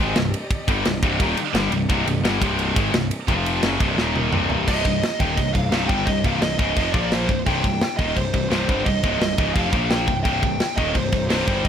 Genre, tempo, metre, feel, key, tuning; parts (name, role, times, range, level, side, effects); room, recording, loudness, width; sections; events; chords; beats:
heavy metal; 172 BPM; 4/4; straight; C minor; A4 = 440 Hz
clear symphonic string section; sustained chords; 0.0-11.7 s; C3 to F5; -36 LUFS; left 1 dB
heavy high-gain guitar; riff; 0.0-11.7 s; C2 to Bb3; -28 LUFS; right 14 dB; distortion
high-gain distorted guitar; riff; 0.0-11.7 s; C2 to Bb3; -26 LUFS; left 12 dB; distortion
high-gain distorted guitar; riff; 0.0-11.7 s; C2 to Bb3; -29 LUFS; equal; distortion
fuzz picked electric bass; bass; 0.0-11.7 s; C1 to Bb1; -26 LUFS; equal; overdrive
tight metal drum kit; drums; 0.2-11.7 s; crash cymbal, kick drum, ride cymbal, snare drum, toms; -23 LUFS; equal
high-gain lead guitar; melody; 4.7-11.7 s; C5 to G5; -26 LUFS; right 1 dB; distortion
little or no reverb; -18 LUFS; side -8 dB against mid
0.0-4.7 A section; 4.7-11.7 B section
drum fill 4.0-4.7
0.0 Cm; 3.3 F5; 3.6 Cm; 4.0 Eb5; 4.3 Cm; 6.9 Bb5; 7.3 Cm; 9.7 Bb5; 10.1 Cm
0.16 | 0.51 0.86 1.21 1.55 | 1.90 2.25 2.59 2.94 | 3.29 3.64 3.98 4.33 | 4.68 5.03 5.38 5.73 | 6.07 6.42 6.77 7.12 | 7.47 7.82 8.17 8.52 | 8.86 9.21 9.56 9.91 | 10.26 10.61 10.95 11.30 | 11.65